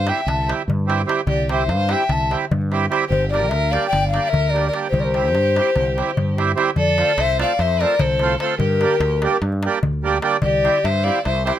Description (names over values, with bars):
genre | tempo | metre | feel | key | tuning
balkan folk, Balkan wedding band | 295 BPM (eighths) | 9/8 | straight | C mixolydian | A4 = 439 Hz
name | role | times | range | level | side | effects
breathy mellow ney | melody | 0.0-11.5 s | Bb4 to A5 | -20 LUFS | left 4 dB | none
clear violin | second line | 0.0-11.5 s | G4 to E5 | -26 LUFS | right 5 dB | none
fretless electric bass | bass | 0.0-11.5 s | G1 to G2 | -22 LUFS | right 1 dB | none
accordion | accompaniment | 0.1-11.6 s | G3 to A4 | -21 LUFS | right 6 dB | none
darbuka | percussion | 0.1-11.6 s | none | -25 LUFS | left 2 dB | none
room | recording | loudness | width
light reverb | close, detailed microphones | -16 LUFS | side -11 dB against mid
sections
0.0-6.8 A section; 6.8-11.6 B section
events
none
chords
0.0 C; 3.1 Gm; 4.9 C; 6.8 F; 8.6 Gm; 10.4 C